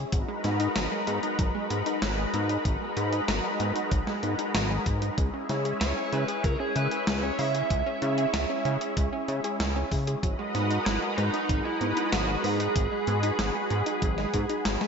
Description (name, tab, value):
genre	synthwave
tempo	95 BPM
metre	4/4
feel	straight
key	G# minor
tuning	A4 = 437 Hz
part	analog string pad	sustained chords	0.0-14.9 s	G#3 to D#5	-30 LUFS	left 1 dB	ensemble chorus, sidechain pumping
part	analog pluck	arpeggios	0.0-14.9 s	F#3 to G#4	-34 LUFS	right 1 dB	chorus, phaser, diffuse ambient delay
part	chorused synth bass	bass	0.0-14.8 s	G#1 to C#3	-29 LUFS	equal	tube saturation
part	electronic kick drum	drums	0.1-14.5 s	none	-29 LUFS	equal	none
part	gated 80s digital drum machine	drums	0.1-14.9 s	hi-hat, snare drum	-33 LUFS	equal	gated reverb, gated reverb snare
part	lead guitar through a small cranked amp	melody	5.8-14.6 s	D#4 to E5	-31 LUFS	right 3 dB	overdrive, diffuse ambient delay
room	moderate plate reverb, RT60 2.5 s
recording	dreamy mix soaked in reverb, nothing above 7.8 kHz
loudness	-25 LUFS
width	side -6 dB against mid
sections	0.0-14.9 A section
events	none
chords	0.1 G#m7; 5.2 C#m; 10.2 G#m7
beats	| 0.13 0.76 1.39 2.02 | 2.65 3.28 3.92 4.55 | 5.18 5.81 6.44 7.07 | 7.70 8.34 8.97 9.60 | 10.23 10.86 11.49 12.13 | 12.76 13.39 14.02 14.65